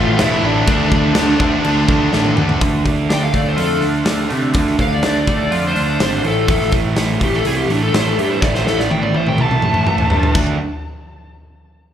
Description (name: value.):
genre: quiet-loud alternative rock.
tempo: 124 BPM.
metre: 4/4.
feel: straight.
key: D minor.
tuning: A4 = 440 Hz.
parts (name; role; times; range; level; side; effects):
smooth overdriven lead guitar; melody; 0.0-10.3 s; D4 to A5; -20 LUFS; left 2 dB; slapback echo, digital delay.
fuzz guitar; riff; 0.0-2.6 s; A2 to D4; -22 LUFS; left 10 dB; distortion, slapback echo.
sludgy distorted guitar; riff; 0.0-2.6 s; A2 to D4; -22 LUFS; left 1 dB; overdrive, slapback echo.
thick fuzz guitar; riff; 0.0-10.5 s; A2 to D4; -21 LUFS; right 8 dB; distortion, slapback echo.
fuzz picked electric bass; bass; 0.0-10.6 s; E1 to C3; -20 LUFS; equal; overdrive.
big rock drum kit; drums; 0.2-10.5 s; crash cymbal, hi-hat, kick drum, snare drum, toms; -19 LUFS; equal; none.
clean electric guitar; arpeggios; 2.6-6.5 s; A2 to F4; -25 LUFS; left 2 dB; analog chorus, slapback echo.
room: studio reverb.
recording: live gig heard through the venue's PA, club reverb.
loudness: -13 LUFS.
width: side -10 dB against mid.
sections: 0.0-2.6 A section; 2.6-10.4 B section; 10.4-11.9 C section.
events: drum fill 2.1-2.6, 8.4-10.4; lead electric guitar solo 2.6-10.4.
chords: 0.0 Asus4; 0.7 Dm; 6.2 A5; 10.4 D5.